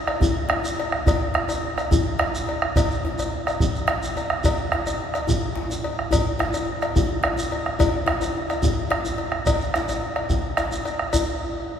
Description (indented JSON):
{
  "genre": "west african traditional, West African drum ensemble",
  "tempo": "143 BPM (dotted quarters)",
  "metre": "12/8",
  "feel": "straight",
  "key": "none",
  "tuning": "none",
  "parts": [
    { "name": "bombo", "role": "percussion", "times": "0.1-11.3 s", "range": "none", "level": "-23 LUFS", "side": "right 2 dB", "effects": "none" },
    { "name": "cowbell", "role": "percussion", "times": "0.1-11.3 s", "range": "none", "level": "-29 LUFS", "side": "left 3 dB", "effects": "none" },
    { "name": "djembe", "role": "percussion", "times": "0.1-11.3 s", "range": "none", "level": "-28 LUFS", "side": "left 3 dB", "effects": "none" },
    { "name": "shekere", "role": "percussion", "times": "0.2-11.3 s", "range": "none", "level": "-32 LUFS", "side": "right 1 dB", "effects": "none" }
  ],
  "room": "wet cathedral reverb, RT60 5.1 s",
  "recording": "recorded in a church or concert hall",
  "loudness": "-21 LUFS",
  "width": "side -8 dB against mid",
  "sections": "0.0-11.1 A section",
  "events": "none",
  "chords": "none"
}